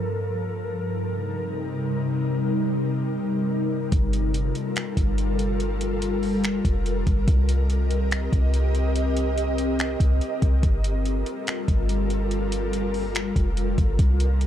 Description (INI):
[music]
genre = hip hop, atmospheric cloud-rap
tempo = 143 BPM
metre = 4/4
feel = half-time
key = G minor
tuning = A4 = 445 Hz
[part]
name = ethereal airy pad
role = sustained chords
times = 0.0-14.5 s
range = G2 to Eb5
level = -25 LUFS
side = left 1 dB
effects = ensemble chorus, built-in reverb, sidechain pumping, low-pass filter
[part]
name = clean 808-style bass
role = bass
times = 3.9-14.5 s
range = F1 to C2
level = -23 LUFS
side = equal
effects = none
[part]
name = smooth R&B drum kit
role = drums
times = 3.9-14.5 s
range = finger snaps, hi-hat, kick drum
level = -25 LUFS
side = equal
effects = none
[sound]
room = little or no reverb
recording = dry, gritty hardware recording, transformer saturation, cassette tape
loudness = -22 LUFS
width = side -10 dB against mid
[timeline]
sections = 0.0-3.9 A section; 3.9-14.5 B section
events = none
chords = 0.0 Gm9; 0.6 Cm7; 3.9 Gm9; 7.3 Cm7; 10.6 Gm9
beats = 0.14 | 0.56 0.98 1.40 1.82 | 2.24 2.66 3.08 3.50 | 3.92 4.34 4.76 5.18 | 5.60 6.02 6.44 6.86 | 7.28 7.70 8.12 8.54 | 8.96 9.38 9.79 10.21 | 10.63 11.05 11.47 11.89 | 12.31 12.73 13.15 13.57 | 13.99 14.41